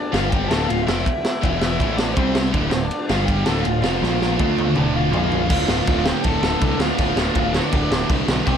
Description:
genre	punk rock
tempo	162 BPM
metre	4/4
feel	straight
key	D minor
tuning	A4 = 444 Hz
part	raw garage guitar	melody	0.0-8.6 s	C4 to A5	-24 LUFS	right 1 dB	overdrive
part	heavy high-gain guitar	riff	0.1-8.6 s	D2 to D4	-27 LUFS	left 1 dB	distortion
part	sludgy distorted guitar	riff	0.1-8.6 s	D2 to D4	-26 LUFS	left 10 dB	overdrive
part	growling picked electric bass	bass	0.1-8.6 s	D1 to D2	-25 LUFS	equal	overdrive
part	raw garage drum kit	drums	0.1-8.6 s	crash cymbal, kick drum, ride cymbal, snare drum, toms	-22 LUFS	equal	none
part	distorted electric guitar	riff	2.5-8.6 s	D2 to D4	-26 LUFS	right 12 dB	distortion
room	light reverb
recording	none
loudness	-17 LUFS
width	side -8 dB against mid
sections	0.0-5.5 A section; 5.5-8.6 B section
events	drum fill 4.0-5.5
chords	0.1 G5; 0.5 Dm; 1.4 E5; 1.8 A5; 2.2 C5; 2.5 D5; 3.1 G5; 3.5 Dm; 4.0 Bb5; 4.4 Dm; 5.1 Bb5; 5.5 Dm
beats	0.31 0.68 | 1.05 1.42 1.79 2.17 | 2.54 2.91 3.28 3.65 | 4.02 4.39 4.76 5.13 | 5.50 5.87 6.24 6.61 | 6.98 7.35 7.72 8.09 | 8.46

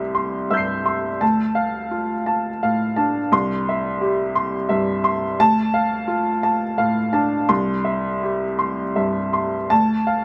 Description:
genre	neoclassical minimalist piano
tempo	53-59 BPM (dotted quarters)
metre	6/8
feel	rubato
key	D minor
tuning	A4 = 440 Hz
part	clear upright piano	solo	0.0-10.2 s	C2 to C7	-21 LUFS	equal	none
room	moderate studio reverb, RT60 0.8 s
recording	none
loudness	-21 LUFS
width	mono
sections	0.0-9.7 A section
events	none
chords	0.0 C; 1.2 Dm; 3.3 C; 5.4 Dm; 7.5 C; 9.7 Dm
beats	0.13 | 1.22 2.27 | 3.32 4.35 | 5.37 6.41 | 7.49 8.60 | 9.71

